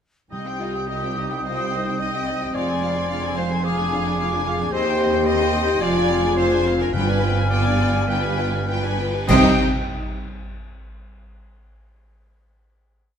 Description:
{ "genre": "classical, dramatic, fast romantic movement for symphony orchestra", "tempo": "96-111 BPM", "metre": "4/4", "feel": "rubato", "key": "C minor", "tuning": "A4 = 439 Hz", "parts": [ { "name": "warm studio violin section", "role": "melody", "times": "0.3-9.6 s", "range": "Eb5 to Ab5", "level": "-29 LUFS", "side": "left 4 dB", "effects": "none" }, { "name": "concert flute", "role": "second line", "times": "0.3-9.6 s", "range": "G5 to Eb6", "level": "-30 LUFS", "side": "equal", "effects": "none" }, { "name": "warm oboe", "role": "second line", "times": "0.3-9.5 s", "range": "Eb5 to Ab5", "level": "-30 LUFS", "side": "right 2 dB", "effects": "none" }, { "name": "rich symphonic viola section", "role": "accompaniment", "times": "0.3-9.6 s", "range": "G3 to C5", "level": "-30 LUFS", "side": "right 1 dB", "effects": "none" }, { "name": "mellow French horn section", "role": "sustained chords", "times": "0.3-9.5 s", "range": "G3 to Ab4", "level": "-26 LUFS", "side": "left 4 dB", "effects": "none" }, { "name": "rich studio cello section", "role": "bass", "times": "0.3-9.6 s", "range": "C2 to C3", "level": "-26 LUFS", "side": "right 2 dB", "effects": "none" }, { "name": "rich symphonic double bass section", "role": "bass", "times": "0.3-9.6 s", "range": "F1 to Eb2", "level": "-27 LUFS", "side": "right 3 dB", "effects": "none" }, { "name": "timpani", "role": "percussion", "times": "0.3-1.1, 6.9-9.6 s", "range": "G2 to C3", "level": "-27 LUFS", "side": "equal", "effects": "none" }, { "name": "clear clarinet", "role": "second line", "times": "0.6-9.5 s", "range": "F4 to Eb5", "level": "-29 LUFS", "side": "equal", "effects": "none" }, { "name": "rich symphonic violin section", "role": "second line", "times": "0.6-9.6 s", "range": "F4 to Eb5", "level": "-30 LUFS", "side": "left 2 dB", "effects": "none" }, { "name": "cymbal swell, clash cymbals and concert bass drum", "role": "percussion", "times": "6.9-10.4 s", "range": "none", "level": "-28 LUFS", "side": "equal", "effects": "none" } ], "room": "wet recital hall reverb, RT60 1.8 s", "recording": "none", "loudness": "-18 LUFS", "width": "side -8 dB against mid", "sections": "0.3-9.3 A section; 9.3-11.7 final chord", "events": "slowing down 3.6-9.3; band accent 9.3-9.9", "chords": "0.3 Cm; 2.5 Fm; 3.6 Ddim/F; 4.7 Cm/Eb; 5.8 Dm7b5/F; 6.9 G7b9; 9.3 Cm", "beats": "| 0.32 0.88 1.44 2.00 | 2.55 3.10 3.65 4.18 | 4.73 5.27 5.82 6.38 | 6.94 7.51 8.08 8.67 | 9.29 9.88" }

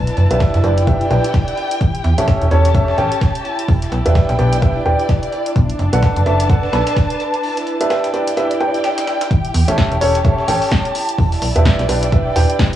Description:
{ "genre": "piano house", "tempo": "128 BPM", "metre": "4/4", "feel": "swing 59% on 16ths", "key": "E dorian", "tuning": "A4 = 442 Hz", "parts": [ { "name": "plucky analog bass", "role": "bass", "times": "0.0-12.4 s", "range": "E1 to E2", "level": "-16 LUFS", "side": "equal", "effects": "sidechain pumping" }, { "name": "dark studio string section", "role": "texture", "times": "0.0-12.8 s", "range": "D4 to A5", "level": "-22 LUFS", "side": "equal", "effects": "sidechain pumping" }, { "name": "breakbeat sampler-style drum kit", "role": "drums", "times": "0.1-12.7 s", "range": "hi-hat, snare drum", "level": "-33 LUFS", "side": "equal", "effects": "high-pass filter on hats, cassette tape, high-pass filter on snare, high-pass filter on room" }, { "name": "punchy analog drum machine", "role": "drums", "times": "0.1-12.8 s", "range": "hi-hat, snare drum", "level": "-24 LUFS", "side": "left 1 dB", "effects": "overdrive, cassette tape" }, { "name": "bright upright piano", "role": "riff", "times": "0.3-12.8 s", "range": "C#4 to B5", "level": "-19 LUFS", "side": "right 1 dB", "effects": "sidechain pumping, low-pass filter, analog delay" }, { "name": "electronic kick drum", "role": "drums", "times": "0.4-12.7 s", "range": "none", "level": "-16 LUFS", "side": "equal", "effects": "overdrive, cassette tape" } ], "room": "light reverb", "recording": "home recording on cassette, small room ambience", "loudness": "-13 LUFS", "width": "side -12 dB against mid", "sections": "0.0-12.8 A section", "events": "break 7.4-9.3", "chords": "0.0 Em7; 1.8 A7; 3.5 Em7; 5.3 Bm7; 7.4 Em7; 9.3 A7; 10.9 Em7", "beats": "0.40 0.87 1.34 | 1.81 2.28 2.75 3.22 | 3.69 4.15 4.62 5.09 | 5.56 6.03 6.50 6.97 | 7.43 7.90 8.37 8.84 | 9.31 9.78 10.25 10.72 | 11.19 11.65 12.12 12.59" }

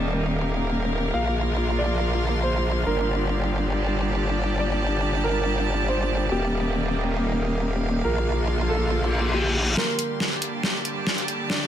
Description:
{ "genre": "heavy wobble dubstep", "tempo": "139 BPM", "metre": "4/4", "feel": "swing 53% on 16ths, half-time", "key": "G minor", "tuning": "A4 = 440 Hz", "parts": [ { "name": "dark grand piano", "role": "melody", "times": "0.0-11.7 s", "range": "Bb3 to F5", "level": "-30 LUFS", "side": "right 2 dB", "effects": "ping-pong delay" }, { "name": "supersaw pad", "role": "sustained chords", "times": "0.0-11.7 s", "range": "D3 to G4", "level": "-30 LUFS", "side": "right 1 dB", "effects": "vintage 12-bit sampler grit" }, { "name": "growl bass", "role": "bass", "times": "0.0-9.8 s", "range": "Eb1 to Bb1", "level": "-24 LUFS", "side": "equal", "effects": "chorus, overdrive" }, { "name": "rich chamber string section", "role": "texture", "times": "0.0-11.7 s", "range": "Bb3 to C6", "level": "-30 LUFS", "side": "right 1 dB", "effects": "none" }, { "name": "reverse cymbal and riser", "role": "sound effects", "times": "9.1-11.7 s", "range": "none", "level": "-29 LUFS", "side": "left 2 dB", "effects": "none" }, { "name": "dubstep drum kit", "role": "drums", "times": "9.8-11.6 s", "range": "hi-hat, snare drum", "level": "-24 LUFS", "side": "equal", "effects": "overdrive" } ], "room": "light reverb, digital ambience", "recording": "none", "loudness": "-22 LUFS", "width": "side -10 dB against mid", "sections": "0.0-9.8 A section; 9.8-11.7 B section", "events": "reverse cymbal 9.1-9.8; build-up 9.8-11.7; drum fill 9.8-11.7", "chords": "0.0 Eb; 1.1 Bb; 2.9 Gm; 6.3 Eb; 8.0 Bb; 9.8 Gm", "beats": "0.28 0.71 | 1.14 1.57 2.00 2.43 | 2.87 3.30 3.73 4.16 | 4.59 5.02 5.46 5.89 | 6.32 6.75 7.18 7.61 | 8.04 8.48 8.91 9.34 | 9.77 10.20 10.63 11.07 | 11.50" }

